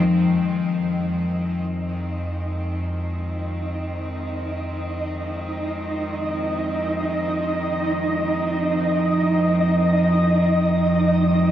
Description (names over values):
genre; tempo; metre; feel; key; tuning
dark ambient drone; free time; none; none; unclear; A4 = 440 Hz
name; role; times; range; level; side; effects
rich symphonic cello section; sustained chords; 0.0-11.5 s; F2 to C4; -30 LUFS; equal; shimmer reverb
deep rumbling drone; drone; 0.0-11.5 s; F2 to F3; -22 LUFS; equal; built-in reverb
flickering grainy texture; texture; 1.0-11.5 s; Eb4 to Eb5; -24 LUFS; right 1 dB; built-in reverb, shimmer reverb
room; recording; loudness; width
wet huge ambient reverb, RT60 7.6 s; worn, warbling old tape, cassette tape, warbly pitch drift; -20 LUFS; side -11 dB against mid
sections
0.1-11.5 A section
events
fade-in on cello section 0.1-11.5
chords
0.1 Fm